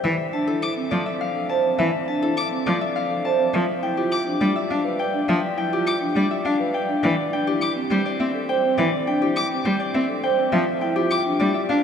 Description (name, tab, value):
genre	classical, minimalist pattern music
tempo	103 BPM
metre	3/4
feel	straight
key	D minor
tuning	A4 = 440 Hz
part	Celtic harp	melody	0.0-11.8 s	G4 to A5	-26 LUFS	left 5 dB	none
part	clear cello	accompaniment	0.0-11.8 s	E3 to D4	-25 LUFS	equal	none
part	vibraphone with soft mallets	arpeggios	0.3-11.4 s	C4 to D5	-24 LUFS	right 2 dB	none
part	rich violin	arpeggios	0.6-11.2 s	D6	-32 LUFS	left 3 dB	none
room	wet cathedral reverb, RT60 6.1 s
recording	in a vast, echoing space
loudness	-20 LUFS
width	side -7 dB against mid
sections	0.0-11.8 A section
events	none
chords	0.0 Dm7; 3.5 G7(no3); 7.0 C; 10.5 G7(no3)